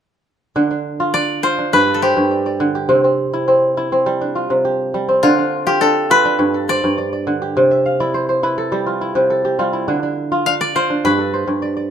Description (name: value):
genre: west african traditional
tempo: 103 BPM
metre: 4/4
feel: straight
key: D dorian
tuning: A4 = 442 Hz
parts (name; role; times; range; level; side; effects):
- kora; arpeggios; 0.6-11.9 s; G2 to F5; -16 LUFS; right 1 dB; none
- koto; melody; 1.1-11.9 s; F4 to F5; -16 LUFS; left 2 dB; none
room: light reverb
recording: minimal, uncompressed stereo recording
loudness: -14 LUFS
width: side -8 dB against mid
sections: 0.6-11.9 A section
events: kora fill 7.7-9.9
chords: 0.6 Dm; 1.7 G5; 2.9 C; 5.2 Dm; 6.4 G5; 7.6 C; 9.9 Dm; 11.0 G